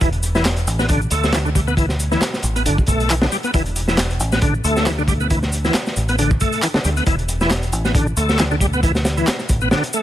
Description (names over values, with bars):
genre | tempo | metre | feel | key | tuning
breakbeat, breaks | 136 BPM | 4/4 | swing 55% on 16ths | E minor | A4 = 440 Hz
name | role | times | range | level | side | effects
bright tonewheel organ | riff | 0.0-10.0 s | D3 to B3 | -21 LUFS | equal | chorus vibrato, slow rotary speaker, tube saturation, digital delay
deep dub picked electric bass | bass | 0.0-9.7 s | E1 to D2 | -21 LUFS | equal | none
crunchy breakbeat drum kit | drums | 0.0-10.0 s | hi-hat, kick drum, snare drum | -20 LUFS | equal | none
electronic shaker and handclaps | drums | 0.0-10.0 s | none | -27 LUFS | equal | overdrive
room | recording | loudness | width
small room ambience | lossy compression artefacts | -16 LUFS | side -12 dB against mid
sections
0.0-10.0 A section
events
none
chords
0.0 E7(no3)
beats
| 0.01 0.45 0.89 1.33 | 1.77 2.22 2.66 3.10 | 3.54 3.98 4.42 4.86 | 5.30 5.75 6.19 6.63 | 7.07 7.51 7.95 8.39 | 8.83 9.28 9.72